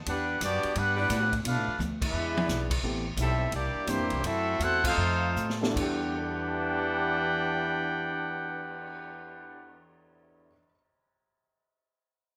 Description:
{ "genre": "jazz, big band swing", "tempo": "148-174 BPM", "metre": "4/4", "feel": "swing 64% on 8ths", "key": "E minor", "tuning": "A4 = 441 Hz", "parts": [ { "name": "upright bass", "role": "bass", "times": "0.0-10.5 s", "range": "A1 to B2", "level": "-36 LUFS", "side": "equal", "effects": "none" }, { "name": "clear trumpet section", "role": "melody", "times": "0.1-9.8 s", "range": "Bb3 to G5", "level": "-32 LUFS", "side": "equal", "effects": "none" }, { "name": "warm trombone section", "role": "second line", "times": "0.1-9.8 s", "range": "E3 to G4", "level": "-37 LUFS", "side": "equal", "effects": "none" }, { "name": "swinging big-band drum kit", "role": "drums", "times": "0.1-8.9 s", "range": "crash cymbal, cymbal swell, hi-hat, kick drum, ride cymbal, snare drum, toms", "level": "-38 LUFS", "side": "equal", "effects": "none" }, { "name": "warm saxophone section", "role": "sustained chords", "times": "1.0-2.8 s", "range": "E3 to G#4", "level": "-39 LUFS", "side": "equal", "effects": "none" }, { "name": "warm upright piano", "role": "accompaniment", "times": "2.8-10.7 s", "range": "E2 to A6", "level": "-38 LUFS", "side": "equal", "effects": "none" } ], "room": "moderate large studio reverb, RT60 1.1 s", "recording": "none", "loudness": "-29 LUFS", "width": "mono", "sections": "0.0-2.8 A section; 2.8-5.8 B section; 5.8-9.0 C section", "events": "drum fill 1.8-2.5, 5.4-5.8; band accent 2.0, 4.8; slowing down 2.8-5.8", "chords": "0.1 Em9; 1.5 Bm7b5; 2.1 E7; 2.8 Am7; 3.5 C9; 4.2 F#m7b5; 5.0 F7; 5.8 Em9" }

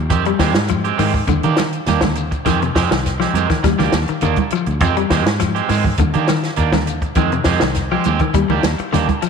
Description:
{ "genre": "afrobeat", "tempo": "102 BPM", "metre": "4/4", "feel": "straight", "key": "F dorian", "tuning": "A4 = 440 Hz", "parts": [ { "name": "fingered electric bass", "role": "bass", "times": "0.0-9.3 s", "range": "C2 to Eb3", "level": "-20 LUFS", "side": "equal", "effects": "none" }, { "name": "electric guitar at the edge of break-up", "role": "stabs", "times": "0.1-9.3 s", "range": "Eb3 to G4", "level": "-21 LUFS", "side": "right 9 dB", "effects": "spring reverb" }, { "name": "compact cocktail drum kit", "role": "drums", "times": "0.1-9.3 s", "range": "hi-hat, kick drum, snare drum", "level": "-21 LUFS", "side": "equal", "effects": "none" }, { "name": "congas", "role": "percussion", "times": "0.1-9.2 s", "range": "none", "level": "-24 LUFS", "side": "right 12 dB", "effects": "none" }, { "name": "shekere", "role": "percussion", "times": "0.1-9.3 s", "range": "none", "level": "-27 LUFS", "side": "left 4 dB", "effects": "none" }, { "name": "clean electric guitar", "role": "arpeggios", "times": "0.3-9.3 s", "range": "C3 to G3", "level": "-22 LUFS", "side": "left 11 dB", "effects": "spring reverb" } ], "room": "moderate echo chamber reverb, RT60 2.1 s", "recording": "1960s-style stereo with parts hard left and right", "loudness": "-14 LUFS", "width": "side -6 dB against mid", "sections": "0.0-9.3 A section", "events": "none", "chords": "0.1 Fm9; 1.3 Ebmaj7; 2.5 Fm9; 3.6 Ebmaj7; 4.8 Fm9; 6.0 Ebmaj7; 7.2 Fm9; 8.3 Ebmaj7" }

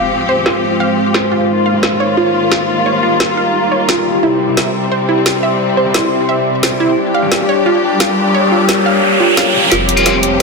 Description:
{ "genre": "dark technical drum and bass", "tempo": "175 BPM", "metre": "4/4", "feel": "straight", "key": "F minor", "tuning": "A4 = 440 Hz", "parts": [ { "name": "rich studio string section", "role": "sustained chords", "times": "0.0-10.4 s", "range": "C3 to G4", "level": "-17 LUFS", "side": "left 2 dB", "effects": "none" }, { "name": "impact and riser", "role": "sound effects", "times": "0.0-0.1, 7.8-10.4 s", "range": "none", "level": "-17 LUFS", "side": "right 1 dB", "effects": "none" }, { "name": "deep dark ambient pad", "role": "texture", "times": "0.0-10.4 s", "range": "Ab3 to C6", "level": "-17 LUFS", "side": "equal", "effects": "chorus, built-in reverb" }, { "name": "wide unison pluck", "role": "arpeggios", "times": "0.3-10.1 s", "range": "E4 to F5", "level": "-17 LUFS", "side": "right 1 dB", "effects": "ping-pong delay" }, { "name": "scooped high-gain guitar", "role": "stabs", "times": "0.4-1.9, 4.0-7.4, 9.5-10.1 s", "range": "Ab3 to Ab4", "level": "-22 LUFS", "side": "left 3 dB", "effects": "distortion, low-pass filter, ping-pong delay" }, { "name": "drum and bass drum kit", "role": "drums", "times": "0.5-10.4 s", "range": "hi-hat, snare drum", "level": "-18 LUFS", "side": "equal", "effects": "high-pass filter on hats, low-pass filter on hats, high-pass filter on cymbals, low-pass filter on cymbals, high-pass filter on snare, low-pass filter on snare, high-pass filter on toms, low-pass filter on toms, high-pass filter on room, low-pass filter on room" }, { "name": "phased detuned saw bass", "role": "bass", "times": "9.7-10.4 s", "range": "F1", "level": "-20 LUFS", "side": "equal", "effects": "phaser, overdrive" } ], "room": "wet lush hall reverb, RT60 2.4 s", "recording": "dense, heavily limited modern master", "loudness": "-11 LUFS", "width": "side -3 dB against mid", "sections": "0.0-9.7 A section", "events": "riser 7.8-9.7, 9.7-10.4; drum fill 9.7-10.4", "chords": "0.0 Fm; 1.5 Ebadd9; 4.2 C; 7.0 Gdim; 9.7 Fm" }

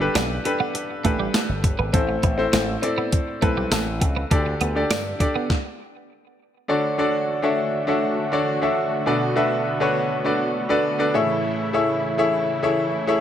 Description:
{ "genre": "1980s-style pop", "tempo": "101 BPM", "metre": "4/4", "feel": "straight", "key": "unclear", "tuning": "A4 = 440 Hz", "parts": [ { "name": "clear baby grand piano", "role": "accompaniment", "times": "0.0-13.2 s", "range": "G2 to E5", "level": "-21 LUFS", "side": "left 1 dB", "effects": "none" }, { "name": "slap bass with an envelope filter", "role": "bass", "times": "0.0-5.1 s", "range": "G1 to G2", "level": "-26 LUFS", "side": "equal", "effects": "none" }, { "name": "twelve-string electric guitar", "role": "riff", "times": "0.2-5.5 s", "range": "G3 to D4", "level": "-28 LUFS", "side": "right 5 dB", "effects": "analog chorus, tape echo" }, { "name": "clean 12-bit digital drum machine", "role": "drums", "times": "0.2-5.6 s", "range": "hi-hat, kick drum, snare drum", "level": "-22 LUFS", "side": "equal", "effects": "gated reverb" }, { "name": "tambourine", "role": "percussion", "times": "0.2-5.0 s", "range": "none", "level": "-38 LUFS", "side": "left 8 dB", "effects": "none" }, { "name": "brassy analog pad", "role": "sustained chords", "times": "6.7-13.2 s", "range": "C#3 to F#4", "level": "-28 LUFS", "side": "right 1 dB", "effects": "chorus" } ], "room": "moderate lush hall reverb, RT60 2.0 s", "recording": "none", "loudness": "-20 LUFS", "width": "side -10 dB against mid", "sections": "0.0-6.7 A section; 6.7-13.2 B section", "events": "stop 5.5-6.7", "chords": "0.0 Gadd9; 1.9 Am; 4.3 Dsus4; 6.7 Dmaj7; 9.1 Bm7; 11.1 Amaj7" }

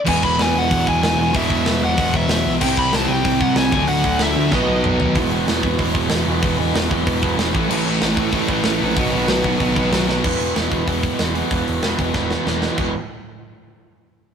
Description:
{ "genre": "punk rock", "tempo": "189 BPM", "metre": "4/4", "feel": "straight", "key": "unclear", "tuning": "A4 = 439 Hz", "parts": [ { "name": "bluesy overdriven lead guitar", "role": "melody", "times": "0.1-4.8 s", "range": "D#5 to B5", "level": "-21 LUFS", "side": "left 1 dB", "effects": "distortion, ping-pong delay" }, { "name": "distorted electric guitar", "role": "riff", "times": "0.1-12.9 s", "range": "E2 to D4", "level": "-26 LUFS", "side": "left 8 dB", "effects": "overdrive" }, { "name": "raw garage guitar", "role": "riff", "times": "0.1-12.9 s", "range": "E2 to D4", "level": "-21 LUFS", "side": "right 4 dB", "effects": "overdrive" }, { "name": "thick fuzz guitar", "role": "riff", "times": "0.1-5.2, 7.7-10.2 s", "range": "A2 to E4", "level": "-24 LUFS", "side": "equal", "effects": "distortion" }, { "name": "growling picked electric bass", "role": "bass", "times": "0.1-12.9 s", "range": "E1 to C3", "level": "-24 LUFS", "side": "equal", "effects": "overdrive" }, { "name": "tight metal drum kit", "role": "drums", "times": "0.1-12.9 s", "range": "crash cymbal, hi-hat, kick drum, snare drum, toms", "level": "-22 LUFS", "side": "equal", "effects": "none" } ], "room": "moderate studio reverb, RT60 0.6 s", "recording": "rough rehearsal-room recording, tube saturation", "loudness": "-16 LUFS", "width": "side -7 dB against mid", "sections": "0.0-5.2 A section; 5.2-10.2 B section; 10.2-12.8 C section; 12.8-14.1 D section", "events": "drum fill 4.5-5.2, 10.1, 12.1-12.8", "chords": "0.1 E; 2.6 C; 3.7 D; 4.5 B; 5.2 E5; 7.5 A; 9.0 B; 10.2 E5" }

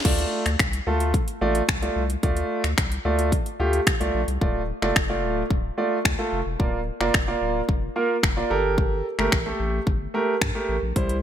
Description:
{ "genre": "dance-pop", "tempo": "110 BPM", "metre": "4/4", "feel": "straight", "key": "D minor", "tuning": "A4 = 442 Hz", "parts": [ { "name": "warm concert grand piano", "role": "accompaniment", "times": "0.0-11.2 s", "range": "G3 to D5", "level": "-24 LUFS", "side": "right 2 dB", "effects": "sidechain pumping" }, { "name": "house drum kit", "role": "drums", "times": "0.0-11.2 s", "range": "crash cymbal, finger snaps, hi-hat, kick drum", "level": "-24 LUFS", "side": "left 1 dB", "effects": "none" }, { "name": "saturated sub bass", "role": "bass", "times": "0.1-11.2 s", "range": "D1 to G2", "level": "-28 LUFS", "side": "left 1 dB", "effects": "sidechain pumping" } ], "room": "light reverb", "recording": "bright 1980s-style digital production", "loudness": "-21 LUFS", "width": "side -10 dB against mid", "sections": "0.1-4.4 A section; 4.4-11.2 B section", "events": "none", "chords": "0.1 Dm; 6.6 Bb/D; 8.5 Gmadd9" }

